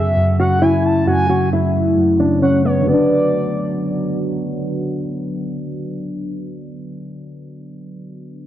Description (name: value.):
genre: hip hop.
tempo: 133 BPM.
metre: 4/4.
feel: half-time.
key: B dorian.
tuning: A4 = 440 Hz.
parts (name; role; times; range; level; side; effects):
nylon-string guitar; melody; 0.0-4.2 s; B3 to G#4; -17 LUFS; equal; low-pass filter.
gliding portamento lead; second line; 0.0-4.2 s; C#5 to A5; -22 LUFS; right 1 dB; chorus, analog delay.
soft electric-piano-like synth keys; accompaniment; 0.0-8.5 s; F#2 to D4; -20 LUFS; left 1 dB; chorus, phaser, low-pass filter.
deep dark ambient pad; sustained chords; 0.0-6.1 s; C#3 to F#4; -26 LUFS; right 1 dB; chorus, built-in reverb, low-pass filter.
room: light reverb.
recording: dry, gritty hardware recording, cassette tape.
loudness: -15 LUFS.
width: side -12 dB against mid.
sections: 0.0-2.9 A section; 2.9-6.5 B section.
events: filter sweep 0.0-2.9.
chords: 0.0 F#m; 2.9 Bm.